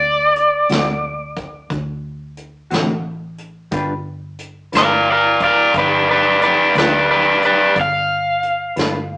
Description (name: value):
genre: slow blues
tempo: 59 BPM (dotted quarters)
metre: 12/8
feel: straight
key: G mixolydian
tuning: A4 = 440 Hz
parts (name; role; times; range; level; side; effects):
- crunchy overdriven guitar; melody; 0.0-9.2 s; B4 to F5; -13 LUFS; equal; none
- vintage muted fingered electric bass; bass; 0.0-9.2 s; G1 to D2; -28 LUFS; equal; none
- vintage brush drum kit; drums; 0.4-8.9 s; hi-hat, kick drum, snare drum; -22 LUFS; equal; none
- clean electric guitar; accompaniment; 0.7-9.0 s; D3 to B4; -23 LUFS; left 1 dB; harmonic tremolo
room: moderate studio reverb, RT60 0.6 s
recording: rough rehearsal-room recording, small speaker sound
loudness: -13 LUFS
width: side -24 dB against mid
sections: 0.0-9.2 A section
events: none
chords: 0.0 D5; 3.7 G7